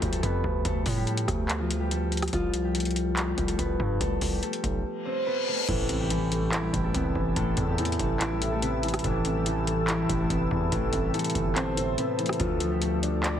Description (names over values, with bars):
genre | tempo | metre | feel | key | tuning
hip hop, trap | 143 BPM | 4/4 | half-time | A minor | A4 = 442 Hz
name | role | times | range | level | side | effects
concert harp | melody | 0.0-13.4 s | E3 to C5 | -29 LUFS | left 1 dB | low-pass filter, digital delay
distorted 808-style bass | bass | 0.0-13.4 s | G1 to A2 | -30 LUFS | right 1 dB | distortion
booming analog drum machine | drums | 0.0-13.3 s | crash cymbal, handclaps, hi-hat, kick drum, rim click | -31 LUFS | equal | none
reverse cymbal and impact | sound effects | 5.0-7.4 s | none | -35 LUFS | left 3 dB | none
dark concert grand piano | accompaniment | 5.7-13.4 s | A2 to D5 | -30 LUFS | equal | low-pass filter
glassy FM pad | sustained chords | 6.4-13.4 s | A4 to E6 | -35 LUFS | equal | ensemble chorus, built-in reverb
room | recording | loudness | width
digital ambience | heavily compressed radio sound | -25 LUFS | side -9 dB against mid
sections
0.0-5.7 A section; 5.7-13.4 B section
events
silent gap 4.8-5.7; reverse cymbal 5.0-5.7; impact 5.7-7.4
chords
0.0 Dm; 2.3 C5; 5.7 Am; 12.4 Dm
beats
0.23 | 0.65 1.07 1.49 1.91 | 2.33 2.75 3.17 3.59 | 4.01 4.43 4.85 5.27 | 5.68 6.11 6.52 6.94 | 7.36 7.78 8.20 8.62 | 9.04 9.46 9.88 10.30 | 10.72 11.14 11.56 11.98 | 12.40 12.82 13.24